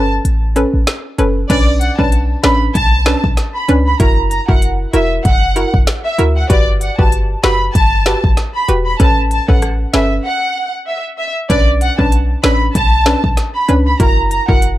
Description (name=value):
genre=dancehall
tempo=96 BPM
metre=4/4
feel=swing 56% on 16ths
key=B minor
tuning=A4 = 440 Hz
part: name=warm symphonic violin section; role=melody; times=0.0-14.6 s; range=D5 to B5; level=-17 LUFS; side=right 1 dB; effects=analog delay
part: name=hollow square pluck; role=accompaniment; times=0.0-14.8 s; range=C#4 to B4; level=-18 LUFS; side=equal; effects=chorus, sidechain pumping
part: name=clean 808-style bass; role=bass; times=0.0-14.8 s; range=E1 to D2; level=-16 LUFS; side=equal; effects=none
part: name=afro-pop drum kit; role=drums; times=0.3-14.8 s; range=crash cymbal, hi-hat, kick drum, rim click, snare drum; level=-14 LUFS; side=equal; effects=none
room=little or no reverb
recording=dry, gritty hardware recording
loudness=-11 LUFS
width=side -15 dB against mid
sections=0.0-1.5 A section; 1.5-14.8 B section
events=kick muted 0.2-1.5; break 10.2-11.5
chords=0.0 Aadd9; 1.5 Bmadd9; 4.0 F#7; 6.5 Gmaj7; 9.0 Aadd9; 11.5 Bmadd9; 14.0 F#7